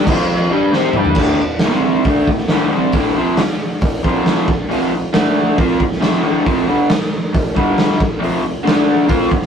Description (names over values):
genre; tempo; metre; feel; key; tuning
garage rock duo or trio; 136 BPM; 4/4; straight; D minor; A4 = 440 Hz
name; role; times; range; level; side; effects
raw garage guitar; riff; 0.0-9.5 s; D2 to C5; -15 LUFS; equal; overdrive
raw garage drum kit; drums; 0.1-9.5 s; crash cymbal, hi-hat, kick drum, snare drum, toms; -17 LUFS; right 1 dB; none
room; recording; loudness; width
light reverb; rough rehearsal-room recording, tube saturation; -13 LUFS; side -7 dB against mid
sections
0.0-1.2 A section; 1.2-9.5 B section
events
drum fill 0.7-1.2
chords
0.1 F5; 0.5 C5; 1.2 D5; 1.6 C5; 2.1 Dm; 4.0 F5; 4.5 N.C.; 4.7 F5; 5.1 D5; 5.6 F5; 7.6 G5; 8.0 F5; 8.7 D5